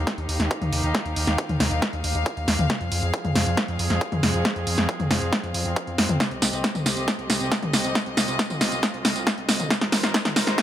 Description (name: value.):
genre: uplifting trance.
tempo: 137 BPM.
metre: 4/4.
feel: straight.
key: unclear.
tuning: A4 = 440 Hz.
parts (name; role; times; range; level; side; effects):
rich chamber string section; sustained chords; 0.0-10.6 s; C3 to F5; -29 LUFS; left 1 dB; sidechain pumping.
gritty driven synth bass; bass; 0.0-10.6 s; Ab1 to F2; -28 LUFS; equal; sidechain pumping.
electronic kick drum; drums; 0.1-10.6 s; none; -30 LUFS; equal; high-pass filter on kick, high-pass filter on room.
punchy analog drum machine; drums; 0.1-10.6 s; hi-hat, snare drum, tambourine, toms; -23 LUFS; equal; sidechain pumping on hats, sidechain pumping on toms, sidechain pumping on perc.
room: light reverb.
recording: high-pass filter.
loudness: -21 LUFS.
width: side -11 dB against mid.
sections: 0.0-10.6 A section.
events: build-up 0.0-10.6; drum fill 0.0-10.6.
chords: 0.0 Ebadd9; 2.7 Fm; 6.2 Cm; 9.7 Abadd9.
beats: 0.07 0.51 | 0.95 1.38 1.82 2.26 | 2.70 3.14 3.57 4.01 | 4.45 4.89 5.33 5.76 | 6.20 6.64 7.08 7.52 | 7.95 8.39 8.83 9.27 | 9.71 10.14 10.58.